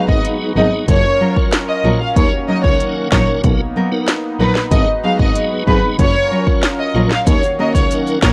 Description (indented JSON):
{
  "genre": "dancehall",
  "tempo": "94 BPM",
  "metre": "4/4",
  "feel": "straight",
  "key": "Eb minor",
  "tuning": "A4 = 442 Hz",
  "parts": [
    { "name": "warm studio violin section", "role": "melody", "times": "0.0-8.3 s", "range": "B4 to F5", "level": "-21 LUFS", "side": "equal", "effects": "tape echo" },
    { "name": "warm analog pad", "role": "sustained chords", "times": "0.0-8.3 s", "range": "Eb3 to Cb5", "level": "-27 LUFS", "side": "equal", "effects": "chorus, sidechain pumping" },
    { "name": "nylon-string guitar", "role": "arpeggios", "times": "0.0-8.3 s", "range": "Gb3 to Bb4", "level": "-22 LUFS", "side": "equal", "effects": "none" },
    { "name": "tonewheel organ", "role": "accompaniment", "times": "0.1-8.3 s", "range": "Gb3 to Bb4", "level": "-24 LUFS", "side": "equal", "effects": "overdrive, chorus vibrato, fast rotary speaker" },
    { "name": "warm double bass", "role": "bass", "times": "0.1-8.3 s", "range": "Gb1 to Eb2", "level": "-21 LUFS", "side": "equal", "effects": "none" },
    { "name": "afro-pop drum kit", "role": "drums", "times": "0.1-8.3 s", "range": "hi-hat, kick drum, snare drum", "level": "-18 LUFS", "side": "equal", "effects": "none" },
    { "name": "maracas", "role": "percussion", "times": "7.3-8.3 s", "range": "none", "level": "-36 LUFS", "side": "equal", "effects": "none" }
  ],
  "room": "small room reverb",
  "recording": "dry, gritty hardware recording, cassette tape",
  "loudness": "-15 LUFS",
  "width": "mono",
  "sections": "0.0-8.3 A section",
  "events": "none",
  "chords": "0.0 Abm7; 0.9 Gbmaj7; 2.2 Ebm7; 3.4 Bmaj7; 4.7 Abm7; 6.0 Gbmaj7; 7.3 Ebm7"
}